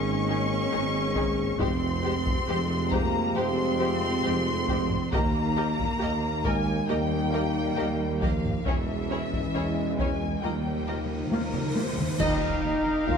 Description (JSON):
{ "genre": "cinematic, epic orchestral film score", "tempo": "68 BPM", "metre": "4/4", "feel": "straight", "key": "unclear", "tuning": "A4 = 436 Hz", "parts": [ { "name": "rich symphonic violin section", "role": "melody", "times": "0.0-13.2 s", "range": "Bb4 to Db6", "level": "-33 LUFS", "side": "left 4 dB", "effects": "none" }, { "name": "dark French horn section", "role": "sustained chords", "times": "0.0-13.2 s", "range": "Ab3 to Ab4", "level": "-33 LUFS", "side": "left 4 dB", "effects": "none" }, { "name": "mellow trombone section", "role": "sustained chords", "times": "0.0-12.6 s", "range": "C3 to Bb3", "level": "-36 LUFS", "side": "right 2 dB", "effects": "none" }, { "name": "mellow tuba", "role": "bass", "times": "0.0-13.2 s", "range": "Fb1 to Eb2", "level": "-32 LUFS", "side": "right 3 dB", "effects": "none" }, { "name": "rich symphonic double bass section", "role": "bass", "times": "0.0-13.2 s", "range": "Ab1 to F2", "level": "-34 LUFS", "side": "right 3 dB", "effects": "none" }, { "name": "warm symphonic cello section", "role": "bass", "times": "0.0-13.2 s", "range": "Eb2 to Db4", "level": "-33 LUFS", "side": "right 2 dB", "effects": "none" }, { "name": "dark symphonic violin section", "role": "second line", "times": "0.3-13.2 s", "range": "G4 to F5", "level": "-36 LUFS", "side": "left 3 dB", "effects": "none" }, { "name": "warm chamber viola section", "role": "accompaniment", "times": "0.3-11.8 s", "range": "Ab3 to Bb4", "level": "-36 LUFS", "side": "equal", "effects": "none" }, { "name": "taiko ensemble", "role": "drums", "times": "1.2-13.2 s", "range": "none", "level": "-31 LUFS", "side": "left 1 dB", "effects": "none" }, { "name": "cymbal swell and impact", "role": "sound effects", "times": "10.8-13.2 s", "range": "none", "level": "-39 LUFS", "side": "left 1 dB", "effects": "none" }, { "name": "timpani", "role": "percussion", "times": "10.4-12.1 s", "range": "Eb3", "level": "-35 LUFS", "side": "equal", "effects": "none" }, { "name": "hollow concert flute", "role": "second line", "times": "12.2-13.2 s", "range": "Eb5 to F5", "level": "-34 LUFS", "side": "left 1 dB", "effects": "none" }, { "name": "pipe organ, strings celeste", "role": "sustained chords", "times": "12.2-13.2 s", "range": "Eb4 to F5", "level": "-32 LUFS", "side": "equal", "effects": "none" }, { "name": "dark trumpet section", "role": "stabs", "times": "12.2-13.2 s", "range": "Eb4 to F4", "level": "-34 LUFS", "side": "right 2 dB", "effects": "none" }, { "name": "clash cymbals and concert bass drum", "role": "percussion", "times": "12.2-13.2 s", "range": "none", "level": "-34 LUFS", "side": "equal", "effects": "none" } ], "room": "moderate scoring stage reverb, RT60 1.8 s", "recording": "none", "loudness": "-24 LUFS", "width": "side -6 dB against mid", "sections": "0.0-12.2 A section", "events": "timpani fill 10.4-12.2; cymbal swell 10.8-12.2; drum fill 11.3-12.2; band accent 12.2-13.1; impact 12.2-13.2", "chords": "0.0 Absus2; 1.6 Fmadd9; 5.1 Eb; 8.7 Dbm/Fb; 10.4 Ebadd9" }